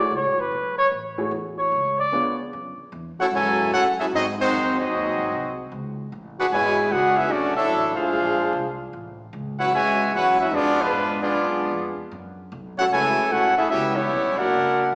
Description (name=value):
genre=jazz, big band swing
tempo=150 BPM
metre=4/4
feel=swing 64% on 8ths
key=F# minor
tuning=A4 = 439 Hz
part: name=dark trumpet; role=melody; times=0.0-2.4 s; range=B4 to D5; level=-25 LUFS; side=equal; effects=none
part: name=warm baby grand piano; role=accompaniment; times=0.0-2.4 s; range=A3 to C#5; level=-31 LUFS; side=equal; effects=none
part: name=upright bass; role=bass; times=0.1-14.9 s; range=F#1 to G#2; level=-38 LUFS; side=equal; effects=none
part: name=bright trumpet section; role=melody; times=3.2-14.9 s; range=G#3 to G#5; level=-23 LUFS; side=equal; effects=none
part: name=warm trombone section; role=second line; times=3.2-14.9 s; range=B2 to F#4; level=-28 LUFS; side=equal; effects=none
room=wet recital hall reverb, RT60 1.7 s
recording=recorded in a church or concert hall, small speaker sound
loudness=-22 LUFS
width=mono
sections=0.0-2.5 A section; 2.5-14.9 B section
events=trumpet solo 0.0-2.5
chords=0.0 F#m9; 1.7 C#7b9; 2.5 F#m9; 4.1 G#7; 5.7 C#m7; 7.3 Bm9; 8.1 A#9; 8.9 A69; 10.5 Fdim7; 12.1 F#m9; 13.7 C#m7b5